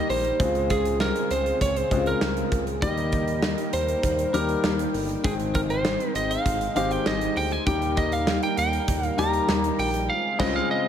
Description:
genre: 1980s-style pop.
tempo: 99 BPM.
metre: 4/4.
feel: straight.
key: Eb major.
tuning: A4 = 441 Hz.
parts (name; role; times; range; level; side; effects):
lightly driven lead guitar; melody; 0.0-10.9 s; Ab4 to Bb5; -26 LUFS; right 2 dB; none.
warm grand piano; accompaniment; 0.0-10.9 s; Db3 to G5; -28 LUFS; left 5 dB; none.
brassy analog pad; sustained chords; 0.0-10.9 s; Db3 to G5; -33 LUFS; right 1 dB; chorus.
smooth synth bass; bass; 0.1-10.6 s; G1 to Eb2; -30 LUFS; equal; none.
big rock drum kit; drums; 0.1-10.6 s; crash cymbal, hi-hat, kick drum, snare drum; -28 LUFS; right 1 dB; none.
room: light reverb, small room ambience.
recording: none.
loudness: -22 LUFS.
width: side -9 dB against mid.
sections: 0.0-10.9 A section.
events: lead electric guitar solo 0.0-10.9; band accent 10.1-10.9.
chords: 0.4 Dbmaj7; 2.8 Eb; 5.2 Abmaj7; 7.7 Eb; 10.1 Dbmaj7.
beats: | 0.40 1.00 1.61 2.22 | 2.82 3.43 4.04 4.64 | 5.25 5.85 6.46 7.07 | 7.67 8.28 8.88 9.49 | 10.10 10.70.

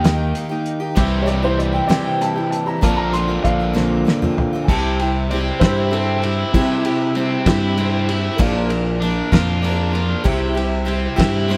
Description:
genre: folk rock and heartland rock.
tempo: 65 BPM (dotted quarters).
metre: 6/8.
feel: straight.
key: unclear.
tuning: A4 = 440 Hz.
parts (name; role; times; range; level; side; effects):
dark upright piano; second line; 0.0-7.7 s; C4 to C6; -26 LUFS; equal; none.
bright reed electric piano; accompaniment; 0.0-4.7, 8.4-11.6 s; G4 to C6; -34 LUFS; equal; none.
picked steel-string acoustic guitar; accompaniment; 0.0-11.6 s; Bb2 to Bb4; -26 LUFS; equal; none.
overdriven semi-hollow guitar; riff; 0.0-11.6 s; Bb2 to G4; -26 LUFS; equal; none.
picked electric bass; bass; 0.0-11.6 s; Bb1 to C3; -24 LUFS; equal; none.
cloth-damped thuddy drum kit; drums; 0.0-11.6 s; crash cymbal, hi-hat, kick drum, ride cymbal, snare drum, toms; -23 LUFS; equal; none.
room: moderate studio reverb, RT60 0.7 s.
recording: band playing live in one room.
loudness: -18 LUFS.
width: mono.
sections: 0.0-4.7 A section; 4.7-11.6 B section.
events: upright piano solo 0.0-4.7; drum fill 3.8-4.7; reed electric piano fill 11.2-11.6.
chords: 0.0 Eb; 1.0 C; 2.8 Bbadd9; 4.7 C; 8.4 Bb; 10.3 C.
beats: 0.05 | 0.97 1.90 | 2.83 3.76 | 4.69 5.62 | 6.54 7.47 | 8.40 9.32 | 10.25 11.18.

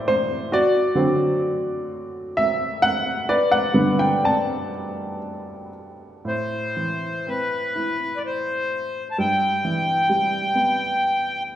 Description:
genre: celtic folk.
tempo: 59-67 BPM.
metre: 3/4.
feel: rubato.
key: A dorian.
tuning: A4 = 440 Hz.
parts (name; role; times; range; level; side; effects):
warm upright piano; accompaniment; 0.0-11.6 s; G2 to A5; -21 LUFS; equal; none.
accordion; melody; 6.3-11.4 s; B4 to A5; -22 LUFS; left 1 dB; none.
room: wet scoring stage reverb, RT60 1.6 s.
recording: recorded in a church or concert hall, nothing above 10.7 kHz.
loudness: -20 LUFS.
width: side -11 dB against mid.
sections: 0.0-6.2 A section; 6.2-11.6 B section.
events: upright piano solo 0.0-6.2.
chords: 0.0 Am; 0.5 D7; 3.3 Gadd9; 6.2 Amadd9; 9.2 Em/G.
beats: | 0.50 1.43 2.36 | 3.29 4.24 5.23 | 6.25 7.25 8.22 | 9.17 10.10 11.01.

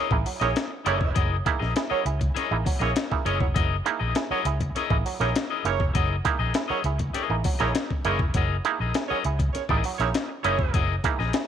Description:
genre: funk.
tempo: 100 BPM.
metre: 4/4.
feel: straight.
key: F# mixolydian.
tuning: A4 = 441 Hz.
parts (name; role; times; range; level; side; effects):
warm horn section; second line; 0.0-10.8 s; C#4 to C#5; -32 LUFS; right 10 dB; none.
clean electric guitar; accompaniment; 0.0-11.4 s; E4 to D#5; -30 LUFS; left 12 dB; none.
auto-wah clav; stabs; 0.1-11.5 s; F#3 to G#4; -29 LUFS; right 10 dB; overdrive, tape echo.
vintage muted fingered electric bass; bass; 0.1-11.3 s; E#1 to C#2; -27 LUFS; equal; none.
breakbeat sampler-style drum kit; drums; 0.1-11.5 s; hi-hat, kick drum, snare drum; -27 LUFS; left 2 dB; none.
room: light reverb, digital ambience.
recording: 1960s-style stereo with parts hard left and right, vinyl crackle.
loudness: -22 LUFS.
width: side -9 dB against mid.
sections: 0.0-11.5 A section.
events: none.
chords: 0.0 F#13.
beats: 0.56 | 1.16 1.76 2.36 2.96 | 3.56 4.16 4.75 5.35 | 5.95 6.55 7.15 7.75 | 8.34 8.94 9.54 10.14 | 10.74 11.34.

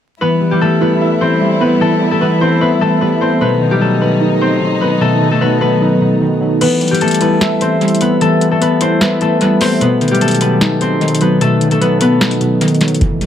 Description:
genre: hip hop, trap.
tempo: 150 BPM.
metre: 4/4.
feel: half-time.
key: E harmonic minor.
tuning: A4 = 441 Hz.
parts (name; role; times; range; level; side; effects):
concert harp; melody; 0.2-13.3 s; G3 to C5; -14 LUFS; left 2 dB; low-pass filter, analog delay.
warbly lo-fi synth keys; accompaniment; 0.2-13.3 s; B2 to E5; -14 LUFS; equal; chorus, low-pass filter, analog delay.
warm chamber string section; sustained chords; 0.2-6.6 s; D#3 to E4; -20 LUFS; left 2 dB; none.
booming analog drum machine; drums; 6.6-13.3 s; crash cymbal, hi-hat, kick drum, snare drum; -19 LUFS; equal; analog delay.
clean 808-style bass; bass; 13.0-13.3 s; E1; -16 LUFS; equal; none.
room: light reverb, digital ambience.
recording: echo-heavy mix, vinyl crackle.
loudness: -11 LUFS.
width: side -9 dB against mid.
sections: 0.2-6.6 A section; 6.6-13.3 B section.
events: kick muted 6.6-13.0.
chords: 0.2 Em; 3.4 B; 6.6 Em; 9.8 B.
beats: | 0.21 0.61 1.01 1.41 | 1.81 2.21 2.61 3.01 | 3.41 3.81 4.21 4.61 | 5.01 5.41 5.81 6.21 | 6.61 7.01 7.41 7.81 | 8.21 8.61 9.01 9.41 | 9.81 10.21 10.61 11.01 | 11.41 11.81 12.21 12.61 | 13.01.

